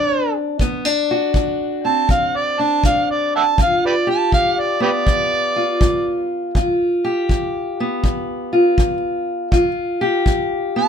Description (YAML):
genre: acoustic country blues, solo or duo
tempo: 81 BPM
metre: 4/4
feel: swing 65% on 8ths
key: unclear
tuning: A4 = 440 Hz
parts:
  - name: overdriven harmonica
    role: melody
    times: 0.0-6.3, 10.8-10.9 s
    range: G4 to A5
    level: -17 LUFS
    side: right 2 dB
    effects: none
  - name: fingerpicked steel-string acoustic guitar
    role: accompaniment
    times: 0.0-10.9 s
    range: D2 to G4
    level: -19 LUFS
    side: left 1 dB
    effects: none
  - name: kick drum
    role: drums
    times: 0.6-10.5 s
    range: none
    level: -19 LUFS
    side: equal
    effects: none
room: light reverb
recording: minimal, uncompressed stereo recording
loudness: -16 LUFS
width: side -7 dB against mid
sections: 0.0-10.9 A section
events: harmonica solo 0.0-10.9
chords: 0.0 D7; 3.6 G7